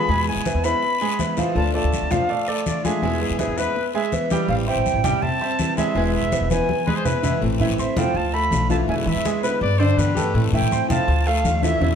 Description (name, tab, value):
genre	latin, Cuban son and guajira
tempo	164 BPM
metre	4/4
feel	straight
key	A minor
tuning	A4 = 440 Hz
part	silver concert flute	melody	0.0-12.0 s	D5 to B5	-25 LUFS	right 1 dB	none
part	picked steel-string acoustic guitar	accompaniment	0.0-12.0 s	B2 to G4	-27 LUFS	left 5 dB	none
part	clear baby grand piano	arpeggios	0.0-12.0 s	D3 to C6	-24 LUFS	right 3 dB	tape echo
part	upright bass	bass	0.1-12.0 s	E1 to E3	-23 LUFS	equal	none
part	congas	percussion	0.1-12.0 s	none	-27 LUFS	left 2 dB	none
part	guiro	percussion	0.1-12.0 s	none	-34 LUFS	left 7 dB	none
part	warm trumpet	second line	3.2-3.8, 6.9-10.4 s	G#4 to D5	-28 LUFS	left 6 dB	none
room	moderate large studio reverb, RT60 1.2 s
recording	none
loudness	-18 LUFS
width	side -7 dB against mid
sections	0.0-7.4 A section; 7.4-12.0 B section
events	drum fill 6.5-7.4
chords	0.1 E; 1.6 Dm; 3.0 E; 4.5 Am7; 6.0 E; 7.4 Am; 8.2 Dm; 8.9 E7; 9.6 G; 10.3 Am; 11.1 Dm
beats	| 0.10 0.46 0.83 1.19 | 1.56 1.93 2.29 2.66 | 3.02 3.39 3.76 4.12 | 4.49 4.86 5.22 5.59 | 5.96 6.32 6.69 7.05 | 7.42 7.79 8.15 8.52 | 8.88 9.25 9.62 9.98 | 10.35 10.71 11.08 11.45 | 11.81